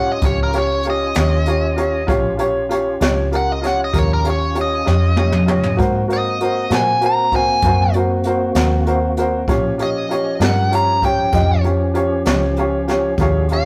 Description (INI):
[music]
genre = slow blues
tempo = 65 BPM (dotted quarters)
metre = 12/8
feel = straight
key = Eb mixolydian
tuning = A4 = 440 Hz
[part]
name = biting lead guitar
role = melody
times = 0.0-13.7 s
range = Bb4 to Bb5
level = -22 LUFS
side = equal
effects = overdrive
[part]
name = warm upright piano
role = accompaniment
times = 0.0-13.7 s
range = F4 to Eb5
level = -22 LUFS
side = equal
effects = none
[part]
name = tonewheel organ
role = sustained chords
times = 0.0-13.7 s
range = F3 to Ab4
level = -29 LUFS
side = equal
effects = overdrive, chorus vibrato, slow rotary speaker
[part]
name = vintage muted fingered electric bass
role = bass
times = 0.0-13.7 s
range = Bb1 to Bb2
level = -22 LUFS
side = equal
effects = none
[part]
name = jazz brush drum kit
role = drums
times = 0.2-13.6 s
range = hi-hat, kick drum, snare drum, toms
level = -24 LUFS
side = equal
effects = none
[sound]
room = light reverb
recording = rough rehearsal-room recording, warm saturation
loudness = -17 LUFS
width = mono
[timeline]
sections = 0.0-13.7 A section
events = drum fill 4.9-5.8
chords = 0.0 Eb9; 5.8 Ab9; 9.5 Eb9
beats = 0.22 1.15 | 2.08 3.00 3.93 4.85 | 5.78 6.71 7.63 8.56 | 9.48 10.41 11.34 12.26 | 13.19